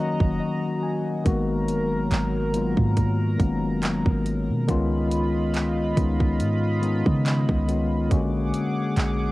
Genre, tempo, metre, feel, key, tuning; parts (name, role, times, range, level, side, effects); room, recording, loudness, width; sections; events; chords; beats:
contemporary R&B; 70 BPM; 4/4; swing 54% on 16ths; G# dorian; A4 = 440 Hz
mellow tine electric piano; accompaniment; 0.0-9.3 s; D3 to G#5; -24 LUFS; left 2 dB; medium stereo tremolo, cassette tape
chorused pulse-width pad; sustained chords; 0.0-9.3 s; F#3 to D6; -31 LUFS; right 1 dB; cassette tape
clean 808-style bass; bass; 0.2-9.3 s; F#1 to C#3; -26 LUFS; right 1 dB
trap drum kit; drums; 0.2-9.2 s; handclaps, hi-hat, kick drum; -25 LUFS; right 1 dB
light reverb; home recording on cassette; -21 LUFS; side -18 dB against mid
0.0-1.3 A section; 1.3-9.3 B section
tine electric piano fill 0.0-1.3; break 0.4-1.3
0.0 F#6; 1.3 G#m9; 4.7 C#9; 8.1 A#7alt
0.40 | 1.25 2.11 2.97 3.83 | 4.68 5.54 6.40 7.25 | 8.11 8.97